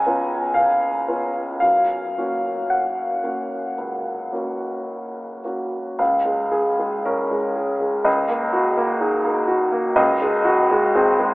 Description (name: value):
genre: classical, romantic character piece for solo piano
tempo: 53-64 BPM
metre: 4/4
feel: rubato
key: F# major, Db major from 6.0 s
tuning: A4 = 441 Hz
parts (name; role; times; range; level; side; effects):
- warm upright piano; solo; 0.0-11.3 s; C#2 to G#5; -18 LUFS; equal; none
room: wet huge ambient reverb, RT60 7.4 s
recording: in a vast, echoing space, telephone sound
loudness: -18 LUFS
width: side -20 dB against mid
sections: 0.0-6.0 A section; 6.0-11.3 B section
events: none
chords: 0.0 C#7; 1.6 F#; 6.0 Db; 8.1 Ebm7/Db; 10.0 Ab7/Db